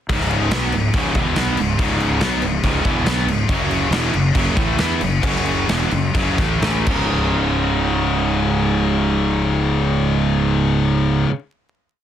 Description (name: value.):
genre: hard rock.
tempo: 120-142 BPM.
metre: 4/4.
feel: straight.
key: C# minor.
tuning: A4 = 440 Hz.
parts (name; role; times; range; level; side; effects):
distorted electric guitar; riff; 0.1-11.3 s; C#2 to E4; -25 LUFS; left 1 dB; overdrive.
overdriven electric guitar; riff; 0.1-11.3 s; C#2 to E4; -22 LUFS; right 6 dB; none.
tight distorted guitar; riff; 0.1-11.3 s; C#2 to E4; -23 LUFS; left 8 dB; distortion.
fuzz fingered electric bass; bass; 0.1-11.2 s; C#1 to E2; -22 LUFS; equal; overdrive.
big rock drum kit; drums; 0.1-7.0 s; crash cymbal, kick drum, snare drum; -21 LUFS; left 1 dB; none.
room: little or no reverb.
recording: dense, heavily limited modern master, vinyl crackle.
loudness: -16 LUFS.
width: side -10 dB against mid.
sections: 0.1-7.1 riff; 7.1-11.1 final hit.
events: slowing down 3.5-7.1.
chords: 0.1 C#m; 3.5 F#5; 6.6 A5; 6.9 C#5.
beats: | 0.10 0.52 0.94 1.37 | 1.79 2.22 2.64 3.07 | 3.49 3.92 4.35 4.79 | 5.23 5.68 6.15 6.62 | 7.11 7.61 8.11 8.61 | 9.11 9.61 10.11 10.60.